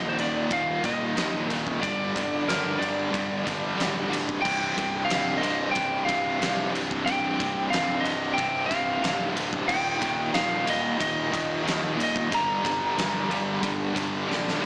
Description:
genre	hard rock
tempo	92 BPM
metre	4/4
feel	straight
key	C minor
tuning	A4 = 441 Hz
part	lightly driven lead guitar	melody	0.0-14.3 s	Bb4 to Bb5	-30 LUFS	equal	none
part	cranked stack guitar	riff	0.0-14.7 s	C2 to G3	-30 LUFS	equal	overdrive, tremolo
part	fuzz fingered electric bass	bass	0.0-14.7 s	C1 to Eb2	-40 LUFS	equal	overdrive
part	huge arena drum kit	drums	0.2-14.6 s	crash cymbal, kick drum, ride cymbal, snare drum	-33 LUFS	equal	none
room	moderate concert hall reverb, RT60 2.3 s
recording	big arena sound, small speaker sound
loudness	-26 LUFS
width	mono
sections	0.0-14.7 A section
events	drum fill 14.3-14.7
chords	0.0 Eb5; 1.8 G5; 4.4 C5; 9.7 Eb; 12.3 Gm

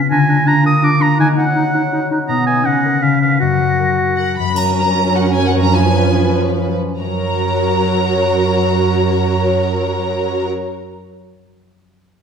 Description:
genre	classical, dramatic, fast romantic movement for symphony orchestra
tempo	132-167 BPM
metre	3/4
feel	rubato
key	F# major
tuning	A4 = 440 Hz
part	mellow hollow concert flute	second line	0.0-4.4 s	D#6 to B6	-22 LUFS	equal	none
part	concert harp	arpeggios	0.0-11.2 s	F#2 to C#5	-18 LUFS	left 4 dB	none
part	mellow clarinet	second line	0.1-4.4 s	B3 to F#4	-19 LUFS	right 1 dB	none
part	warm oboe	second line	0.1-4.3 s	E#5 to D#6	-18 LUFS	right 1 dB	none
part	warm symphonic violin section	melody	4.2-10.4 s	F#5 to B5	-21 LUFS	equal	none
part	warm symphonic violin section	second line	4.6-10.4 s	C#4 to C#5	-20 LUFS	left 3 dB	none
part	dark symphonic viola section	accompaniment	4.6-10.4 s	E#3 to F#4	-19 LUFS	right 2 dB	none
part	rich symphonic cello section	bass	4.6-10.4 s	F#2	-19 LUFS	right 6 dB	none
part	triangle	percussion	4.6-5.3 s	none	-34 LUFS	equal	none
room	wet scoring stage reverb, RT60 1.5 s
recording	none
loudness	-13 LUFS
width	side -6 dB against mid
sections	0.0-4.6 A section; 4.6-7.0 B section; 7.0-9.7 C section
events	slowing down 4.0-7.0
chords	0.1 A#7/D; 1.2 D#m7; 2.3 Bmaj7; 2.6 F#/C#; 3.0 C#7b9; 3.4 F#; 5.7 C#7/F#; 7.0 F#

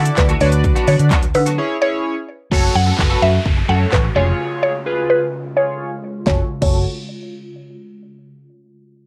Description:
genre	dance-pop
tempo	128 BPM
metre	4/4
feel	straight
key	F# minor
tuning	A4 = 440 Hz
part	mallet-like synth pluck	melody	0.0-6.8 s	B4 to F#5	-21 LUFS	equal	chorus, sidechain pumping, low-pass filter, cassette tape
part	chorused polysynth	accompaniment	0.0-6.8 s	C#4 to D5	-25 LUFS	equal	sidechain pumping, low-pass filter
part	clean electric guitar	riff	0.0-6.8 s	E3 to A4	-28 LUFS	equal	ensemble chorus, low-pass filter
part	vintage muted fingered electric bass	bass	0.0-6.8 s	E#1 to D3	-19 LUFS	equal	sidechain pumping
part	pop drum kit	drums	0.1-6.7 s	crash cymbal, handclaps, hi-hat, kick drum, shaker, snare drum	-21 LUFS	equal	cassette tape
part	ethereal airy pad	sustained chords	3.6-6.5 s	C#3 to F#4	-34 LUFS	equal	ensemble chorus, built-in reverb, sidechain pumping, low-pass filter
part	downlifter	sound effects	2.5-6.3 s	none	-30 LUFS	equal	none
room	light reverb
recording	home recording on cassette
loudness	-17 LUFS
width	mono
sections	0.0-2.5 A section; 2.5-6.3 B section; 6.3-8.1 C section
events	drop 0.0-2.5; break 1.6-2.5, 4.4-6.3; filter sweep 2.5-6.3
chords	0.4 Bm/D; 1.6 C#m; 2.5 F#m; 4.2 C#/E#; 6.3 F#m

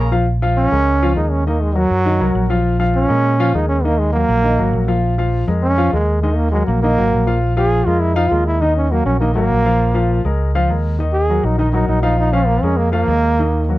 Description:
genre	latin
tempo	201 BPM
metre	4/4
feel	straight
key	Bb minor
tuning	A4 = 440 Hz
part	dark baby grand piano	accompaniment	0.0-13.8 s	Eb3 to F5	-20 LUFS	left 3 dB	none
part	fingered electric bass	bass	0.0-13.8 s	Ab1 to Bb2	-17 LUFS	equal	none
part	warm trombone	melody	0.6-13.8 s	Gb3 to Ab4	-18 LUFS	right 2 dB	none
room	little or no reverb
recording	close, detailed microphones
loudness	-14 LUFS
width	side -16 dB against mid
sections	0.3-13.8 A section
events	trombone solo 0.3-13.8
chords	0.3 Bbm7; 1.5 Ebm; 2.7 Bbm7; 3.8 Ebm; 5.0 Bbm7; 6.2 Ebm; 7.4 Bb5; 8.6 Ebm; 9.8 Bbm7; 11.0 Ebm; 12.2 Bb5

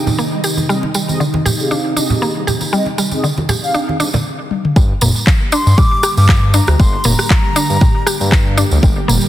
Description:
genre	afro house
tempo	118 BPM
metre	4/4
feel	swing 55% on 16ths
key	G phrygian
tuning	A4 = 440 Hz
part	breathy jazz flute	melody	0.0-0.1, 5.5-8.6 s	G5 to D6	-21 LUFS	left 1 dB	dub echo
part	ethereal airy pad	sustained chords	0.0-9.3 s	C3 to G4	-23 LUFS	right 1 dB	ensemble chorus, built-in reverb, sidechain pumping
part	mallet-like synth pluck	arpeggios	0.0-9.2 s	D3 to G4	-20 LUFS	left 1 dB	chorus, sidechain pumping, dub echo
part	mellow synth brass	stabs	0.0-4.1 s	G3 to F5	-21 LUFS	right 1 dB	chorus, phaser, vintage 12-bit sampler grit, sidechain pumping, dub echo
part	congas	percussion	0.1-4.2 s	none	-20 LUFS	right 2 dB	none
part	tambourine	percussion	0.1-9.3 s	none	-23 LUFS	right 3 dB	none
part	afro-pop drum kit	drums	4.5-9.2 s	handclaps, rim click, toms	-19 LUFS	equal	none
part	smooth synth bass	bass	4.8-9.2 s	F1 to G2	-14 LUFS	equal	sidechain pumping
part	electronic kick drum	drums	4.8-8.9 s	none	-12 LUFS	equal	none
room	light reverb, digital ambience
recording	dense, heavily limited modern master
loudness	-12 LUFS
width	side -13 dB against mid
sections	0.0-4.8 A section; 4.8-9.3 B section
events	stop 4.3-4.8; drum fill 4.5; drop 4.8-9.3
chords	0.0 Ab; 4.8 Gm

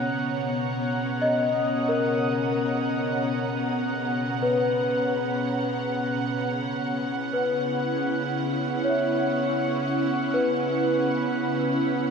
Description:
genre	ambient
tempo	free time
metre	none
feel	none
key	unclear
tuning	A4 = 440 Hz
part	airy breathy pad	sustained chords	0.0-12.1 s	B2 to A#5	-26 LUFS	right 2 dB	chorus
part	celesta	arpeggios	0.0-12.1 s	A#4 to F#5	-28 LUFS	left 2 dB	ping-pong delay
part	bowed-like drone	drone	0.0-12.1 s	C#3 to C#4	-31 LUFS	left 2 dB	built-in reverb
part	glass harmonica	texture	0.0-12.1 s	F#6	-34 LUFS	equal	none
room	wet shimmer reverb, RT60 6.7 s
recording	none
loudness	-23 LUFS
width	side -6 dB against mid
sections	0.0-12.1 A section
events	none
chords	0.0 Bmaj7; 6.7 C#m7

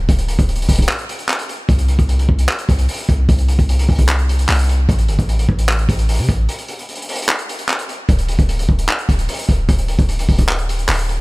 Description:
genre	hip hop, trap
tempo	150 BPM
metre	4/4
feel	half-time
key	unclear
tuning	A4 = 440 Hz
part	long sustained 808-style bass	bass	0.0-11.2 s	D1 to C3	-16 LUFS	equal	none
part	crunchy breakbeat drum kit	drums	0.1-11.2 s	handclaps, hi-hat, kick drum	-16 LUFS	equal	none
room	little or no reverb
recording	none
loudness	-14 LUFS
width	side -24 dB against mid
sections	0.0-8.1 A section; 8.1-11.2 A section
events	break 0.9-1.7, 6.5-8.1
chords	none

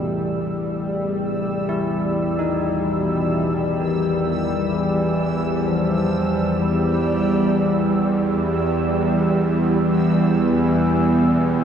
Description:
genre	dark ambient drone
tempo	64 BPM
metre	4/4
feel	straight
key	unclear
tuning	A4 = 440 Hz
part	mellow bass clarinet	melody	0.0-11.6 s	B2 to G3	-28 LUFS	equal	tape echo
part	carillon bells	arpeggios	0.0-8.0 s	A2 to E4	-32 LUFS	equal	tape echo
part	bowed-like drone	drone	0.0-11.6 s	E2 to G3	-19 LUFS	equal	built-in reverb
part	bubbling stepped-filter texture	texture	0.0-11.6 s	E6	-33 LUFS	right 1 dB	chorus, built-in reverb
part	dark analog pad	sustained chords	10.8-11.6 s	B3 to G4	-21 LUFS	right 2 dB	chorus
room	wet huge ambient reverb, RT60 8.9 s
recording	dreamy mix soaked in reverb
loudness	-18 LUFS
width	side -8 dB against mid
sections	0.0-11.6 A section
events	fade-in on synth texture 0.0-11.6; fade-in on church bells 0.0-11.6; fade-in on bass clarinet 0.0-11.6; filter sweep on synth drone 0.0-11.6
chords	0.0 Em

